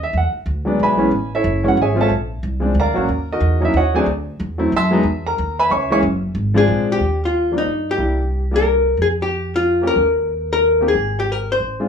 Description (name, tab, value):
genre	jazz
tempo	183 BPM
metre	3/4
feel	swing 63% on 8ths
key	Eb major from 7.0 s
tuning	A4 = 438 Hz
part	warm baby grand piano	accompaniment	0.0-11.9 s	E3 to E6	-18 LUFS	equal	none
part	upright bass	bass	0.0-11.9 s	F#1 to G2	-21 LUFS	equal	none
part	archtop guitar, miked and amplified	melody	6.6-11.9 s	Eb4 to C5	-17 LUFS	left 3 dB	none
room	moderate club reverb, RT60 0.6 s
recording	small room ambience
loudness	-16 LUFS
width	side -7 dB against mid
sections	0.0-7.0 A section; 7.0-11.9 B section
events	none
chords	0.1 E7; 1.1 Amaj7; 2.1 A#7; 3.1 D#m7; 4.1 D9; 5.0 E6; 6.0 G#7#11/F#; 6.7 A#7; 7.0 Eb; 8.0 C7; 9.0 Fsus2; 10.0 Eb5; 10.9 Ab